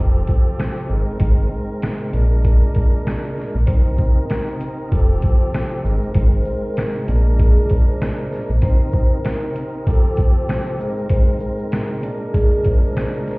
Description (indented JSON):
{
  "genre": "hip hop, boom-bap hip-hop",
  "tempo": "97 BPM",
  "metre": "4/4",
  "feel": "swing 57% on 16ths",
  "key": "unclear",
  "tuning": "A4 = 441 Hz",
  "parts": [
    { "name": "tonewheel organ", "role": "accompaniment", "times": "0.0-13.4 s", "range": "Ab2 to Bb4", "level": "-25 LUFS", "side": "equal", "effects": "overdrive, stopped rotary speaker, cassette tape, high-pass filter, low-pass filter" },
    { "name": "sub bass with octave", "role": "bass", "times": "0.0-8.6 s", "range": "F1 to C2", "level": "-17 LUFS", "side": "equal", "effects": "none" },
    { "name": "trip hop sampler-style drum kit", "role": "drums", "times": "0.3-13.4 s", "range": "hi-hat, kick drum, rim click, shaker, snare drum", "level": "-17 LUFS", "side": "equal", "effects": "none" },
    { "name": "vibraphone with soft mallets", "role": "melody", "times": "3.7-13.4 s", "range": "Ab4 to C5", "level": "-27 LUFS", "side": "equal", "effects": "high-pass filter, low-pass filter" },
    { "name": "egg shaker", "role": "percussion", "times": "3.7-13.4 s", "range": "none", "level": "-68 LUFS", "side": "left 6 dB", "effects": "none" }
  ],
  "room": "little or no reverb",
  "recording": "heard muffled through a wall, stone room reverb, vinyl crackle, EQ",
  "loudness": "-16 LUFS",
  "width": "side -27 dB against mid",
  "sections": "0.0-3.7 A section; 3.7-13.4 B section",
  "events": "none",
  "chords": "0.0 Fadd9; 0.9 Abadd9; 2.1 Bb7; 3.7 Cm7; 4.9 Fadd9; 5.8 Abadd9; 7.1 Bb7; 8.6 Cm7; 9.9 Fadd9; 10.8 Abadd9; 12.0 Bb7"
}